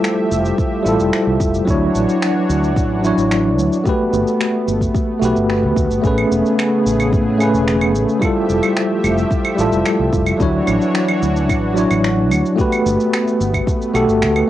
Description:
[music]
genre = sunset chillout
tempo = 110 BPM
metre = 4/4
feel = straight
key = unclear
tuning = A4 = 440 Hz
[part]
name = bell-like tine electric piano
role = accompaniment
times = 0.0-14.5 s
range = F#3 to C#5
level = -16 LUFS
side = equal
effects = fast stereo tremolo, auto-pan, cassette tape, analog delay, plate reverb
[part]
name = lush unison pad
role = sustained chords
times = 0.0-14.5 s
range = C#3 to E5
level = -23 LUFS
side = equal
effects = chorus, cassette tape, plate reverb
[part]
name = electronic finger snaps, shaker and claves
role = drums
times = 0.0-14.5 s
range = none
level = -24 LUFS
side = right 2 dB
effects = overdrive, small room ambience
[part]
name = mellow fretless electric bass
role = bass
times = 0.3-14.4 s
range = E1 to A2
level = -20 LUFS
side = equal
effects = wide subtle chorus
[part]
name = electronic kick drum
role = drums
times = 0.6-13.8 s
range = none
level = -20 LUFS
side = equal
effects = overdrive, small room ambience
[sound]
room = moderate small room reverb, RT60 0.5 s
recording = home recording on cassette, nothing above 11.0 kHz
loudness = -14 LUFS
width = side -13 dB against mid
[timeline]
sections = 0.0-14.5 A section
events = none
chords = 0.0 Fmaj9; 1.7 Dmaj9; 3.9 Gmaj9; 6.0 Amaj9; 8.2 Fmaj9; 10.4 Dmaj9; 12.6 Gmaj9

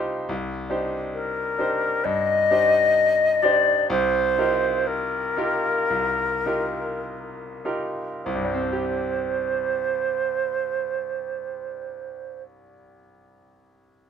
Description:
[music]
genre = classical, impressionist duo for flute and grand piano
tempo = 47-74 BPM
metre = 4/4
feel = rubato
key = C minor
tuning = A4 = 438 Hz
[part]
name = bright concert grand piano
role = accompaniment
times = 0.0-14.1 s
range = C2 to C5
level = -28 LUFS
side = equal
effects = none
[part]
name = mellow hollow silver concert flute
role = melody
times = 1.1-12.4 s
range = Bb4 to Eb5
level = -22 LUFS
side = left 1 dB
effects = none
[sound]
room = light reverb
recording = close, detailed microphones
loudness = -21 LUFS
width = side -7 dB against mid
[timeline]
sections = 0.0-8.3 A section; 8.3-13.1 B section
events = slowing down 0.0-8.3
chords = 0.3 Cmadd9; 3.9 Ebadd9/C; 8.3 Csus2

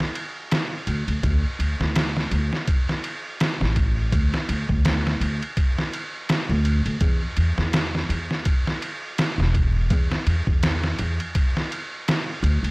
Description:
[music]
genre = trip hop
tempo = 83 BPM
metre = 4/4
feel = swing 57% on 16ths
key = unclear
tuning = A4 = 440 Hz
[part]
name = trip hop sampler-style drum kit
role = drums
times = 0.0-12.7 s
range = kick drum, ride cymbal, snare drum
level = -23 LUFS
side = equal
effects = studio reverb
[part]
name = upright bass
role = bass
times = 0.9-12.7 s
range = E1 to E2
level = -22 LUFS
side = equal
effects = tube saturation
[sound]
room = digital ambience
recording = dry, gritty hardware recording, vinyl crackle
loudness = -21 LUFS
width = side -27 dB against mid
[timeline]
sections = 0.0-12.7 A section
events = none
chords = none

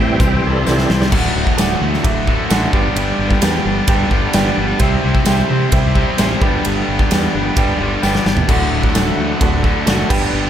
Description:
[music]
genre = classic rock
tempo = 130 BPM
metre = 4/4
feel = straight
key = D major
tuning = A4 = 441 Hz
[part]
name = bright upright piano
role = accompaniment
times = 0.0-10.5 s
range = E4 to G5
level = -24 LUFS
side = right 5 dB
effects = none
[part]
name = tonewheel organ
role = sustained chords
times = 0.0-1.1, 8.5-10.5 s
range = E3 to G5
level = -22 LUFS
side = right 1 dB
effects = slow rotary speaker, overdrive, chorus vibrato
[part]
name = tight distorted guitar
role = riff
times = 0.0-10.5 s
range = D2 to C5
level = -21 LUFS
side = left 1 dB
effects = distortion
[part]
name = fuzz fingered electric bass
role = bass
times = 0.0-10.5 s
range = D1 to C3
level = -20 LUFS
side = equal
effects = overdrive
[part]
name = big rock drum kit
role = drums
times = 0.2-10.2 s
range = crash cymbal, hi-hat, kick drum, ride cymbal, snare drum, toms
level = -17 LUFS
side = equal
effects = none
[part]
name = tambourine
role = percussion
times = 0.7-10.0 s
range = none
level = -31 LUFS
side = left 9 dB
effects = none
[part]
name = crunchy overdriven guitar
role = riff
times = 1.1-10.5 s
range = D2 to C4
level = -21 LUFS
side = right 1 dB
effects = none
[sound]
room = little or no reverb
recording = none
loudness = -13 LUFS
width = side -10 dB against mid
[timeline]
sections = 0.0-1.1 A section; 1.1-10.5 B section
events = tonewheel organ solo 0.0-1.1; drum fill 0.7-1.1, 8.0-8.5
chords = 0.0 C; 1.1 D; 2.7 G; 4.8 C; 6.4 G; 8.5 D

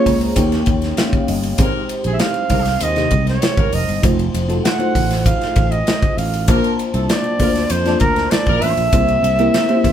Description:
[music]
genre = polished 1980s jazz-funk pop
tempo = 98 BPM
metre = 4/4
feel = straight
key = unclear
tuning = A4 = 440 Hz
[part]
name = clear flugelhorn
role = melody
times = 0.0-9.9 s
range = Bb4 to Gb5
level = -20 LUFS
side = right 3 dB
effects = none
[part]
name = bell-like FM electric piano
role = accompaniment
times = 0.0-9.9 s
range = C3 to Bb5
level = -20 LUFS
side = left 1 dB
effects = chorus
[part]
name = sustaining fretless electric bass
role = bass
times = 0.1-9.9 s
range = F1 to F2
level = -21 LUFS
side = equal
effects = none
[part]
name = modern studio drum kit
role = drums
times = 0.1-9.9 s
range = hi-hat, kick drum, ride cymbal, snare drum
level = -19 LUFS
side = equal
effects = none
[part]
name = mellow horn section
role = second line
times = 1.6-8.7 s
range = Ab3 to Bb4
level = -25 LUFS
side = right 2 dB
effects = none
[sound]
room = moderate studio reverb, RT60 0.7 s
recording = band playing live in one room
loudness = -14 LUFS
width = side -10 dB against mid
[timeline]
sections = 0.0-9.9 A section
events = FM electric piano fill 0.0-1.6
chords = 0.4 Eb7; 1.6 Abmaj7; 4.0 F7b9; 6.5 Bbmaj9; 8.9 C7

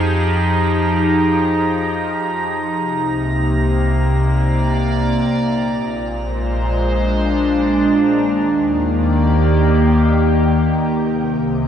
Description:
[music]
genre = ambient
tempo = free time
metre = none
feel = none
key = unclear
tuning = A4 = 442 Hz
[part]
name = evolving wavetable pad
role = sustained chords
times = 0.0-11.7 s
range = Bb2 to D5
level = -16 LUFS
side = equal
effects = chorus, built-in reverb, shimmer reverb
[part]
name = deep rumbling drone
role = bass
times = 0.0-11.7 s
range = Bb1 to F2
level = -21 LUFS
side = equal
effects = built-in reverb
[part]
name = drifting glass-harmonics texture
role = texture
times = 0.0-8.2 s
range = Bb5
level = -26 LUFS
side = right 6 dB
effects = chorus, built-in reverb, shimmer reverb
[sound]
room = wet lush hall reverb, RT60 3.0 s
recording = dark, warm production, nothing above 10.5 kHz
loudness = -14 LUFS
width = side -9 dB against mid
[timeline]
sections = 0.0-8.2 A section; 8.2-11.7 B section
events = none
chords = 0.0 Fm9; 2.8 Cm9; 5.5 Bb9; 8.2 Ebmaj7; 10.9 C7(no3)

